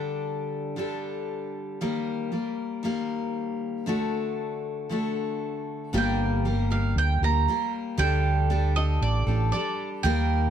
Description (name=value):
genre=acoustic folk duo or small band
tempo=116 BPM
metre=4/4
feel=straight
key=unclear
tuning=A4 = 439 Hz
part: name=picked steel-string acoustic guitar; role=accompaniment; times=0.0-10.5 s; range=G2 to Bb4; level=-28 LUFS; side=left 3 dB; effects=none
part: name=fingered electric bass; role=bass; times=5.9-10.5 s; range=G1 to Eb2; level=-24 LUFS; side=right 1 dB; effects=none
part: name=bowl-back mandolin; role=melody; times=6.0-10.5 s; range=D5 to Bb5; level=-28 LUFS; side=right 8 dB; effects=plate reverb
room=moderate studio reverb, RT60 0.7 s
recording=dark, warm production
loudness=-24 LUFS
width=side -9 dB against mid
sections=0.0-5.9 A section; 5.9-10.5 B section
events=none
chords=0.0 Dsus4; 1.8 Eb; 3.9 D; 5.9 Gm; 8.0 Dsus4